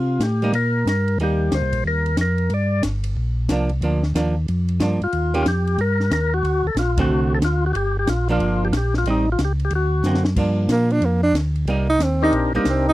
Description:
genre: soul jazz organ trio.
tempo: 183 BPM.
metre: 4/4.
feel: swing 64% on 8ths.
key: G minor.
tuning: A4 = 445 Hz.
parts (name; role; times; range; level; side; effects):
percussive tonewheel organ; melody; 0.0-2.8, 5.0-12.9 s; C4 to D5; -23 LUFS; left 2 dB; slow rotary speaker.
mellow tonewheel organ; bass; 0.0-12.9 s; G1 to C3; -20 LUFS; equal; slow rotary speaker.
compact cocktail drum kit; drums; 0.2-12.8 s; crash cymbal, hi-hat, kick drum, ride cymbal, snare drum; -25 LUFS; left 1 dB; none.
archtop guitar, miked and amplified; accompaniment; 0.4-12.7 s; D3 to G4; -23 LUFS; right 2 dB; none.
breathy tenor saxophone; melody; 10.7-12.9 s; Bb3 to Eb4; -19 LUFS; right 2 dB; none.
room: little or no reverb.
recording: dry, close 1970s-style studio recording.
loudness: -18 LUFS.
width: side -16 dB against mid.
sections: 0.0-10.4 A section; 10.4-12.9 B section.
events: band accent 6.9; drum fill 10.0-10.4; tenor saxophone solo 10.4-12.9.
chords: 0.0 Cm7; 2.5 Gm7; 5.1 Eb; 6.4 D7; 7.8 Gm7; 9.1 Am7b5; 9.7 D7b13; 10.4 Gm7; 11.7 Cm7.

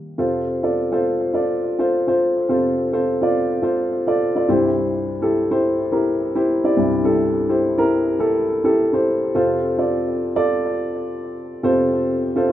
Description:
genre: pop.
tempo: 105 BPM.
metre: 4/4.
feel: swing 56% on 16ths.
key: F major.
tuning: A4 = 440 Hz.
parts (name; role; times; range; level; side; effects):
dark upright piano; solo; 0.0-12.5 s; C2 to D5; -17 LUFS; equal; analog delay.
room: moderate studio reverb, RT60 0.6 s.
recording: rough home demo mix.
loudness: -17 LUFS.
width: side -12 dB against mid.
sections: 0.2-9.3 A section; 9.3-12.5 B section.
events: none.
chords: 0.2 F; 4.5 C; 9.3 F.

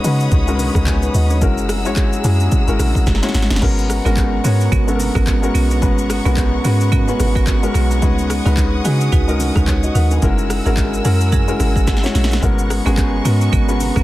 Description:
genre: amapiano.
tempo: 109 BPM.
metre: 4/4.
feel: swing 58% on 16ths.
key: G# minor.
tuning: A4 = 438 Hz.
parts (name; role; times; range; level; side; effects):
warm grand piano; accompaniment; 0.0-14.0 s; G#3 to G#5; -20 LUFS; left 3 dB; none.
muted studio string section; sustained chords; 0.0-14.0 s; B3 to E6; -27 LUFS; equal; none.
deep log drum bass; bass; 0.0-14.0 s; F#1 to C#3; -17 LUFS; equal; none.
deep house drum kit; drums; 0.0-14.0 s; crash cymbal, handclaps, hi-hat, kick drum, rim click, shaker, snare drum; -19 LUFS; equal; overdrive.
congas and bongos; percussion; 0.3-13.9 s; none; -30 LUFS; right 4 dB; none.
marimba with hard mallets; stabs; 4.1-14.0 s; B3 to B4; -24 LUFS; right 9 dB; digital delay.
room: small room ambience.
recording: dense, heavily limited modern master.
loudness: -14 LUFS.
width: side -16 dB against mid.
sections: 0.0-14.0 A section.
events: drum fill 3.1-3.6, 11.9-12.4.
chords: 0.0 C#9sus4; 1.4 F#9; 3.6 G#m11; 8.0 C#9sus4; 10.2 F#9; 12.4 G#m11.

